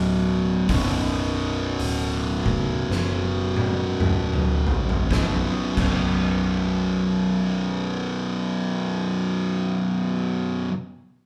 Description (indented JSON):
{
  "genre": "stoner and doom metal",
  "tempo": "54 BPM",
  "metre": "4/4",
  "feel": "swing 60% on 8ths",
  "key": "B minor",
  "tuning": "A4 = 440 Hz",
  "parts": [
    { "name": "fuzz guitar", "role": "riff", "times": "0.0-10.7 s", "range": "B1 to B2", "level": "-25 LUFS", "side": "equal", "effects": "distortion" },
    { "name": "fingered electric bass", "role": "bass", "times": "0.0-10.7 s", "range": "B0 to F#1", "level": "-32 LUFS", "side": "equal", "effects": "overdrive" },
    { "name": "oversized low-tuned drum kit", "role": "drums", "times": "0.7-6.0 s", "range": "crash cymbal, hi-hat, kick drum, snare drum, toms", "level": "-28 LUFS", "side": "equal", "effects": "none" }
  ],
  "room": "wet large studio reverb, RT60 0.9 s",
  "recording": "band playing live in one room",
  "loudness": "-24 LUFS",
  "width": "mono",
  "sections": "0.0-5.1 A section; 5.1-9.6 B section",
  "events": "drum fill 2.9-5.1",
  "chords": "0.0 Bm; 5.1 B5",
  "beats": "| 0.70 1.80 2.90 4.01 | 5.12 6.22 7.33 8.44"
}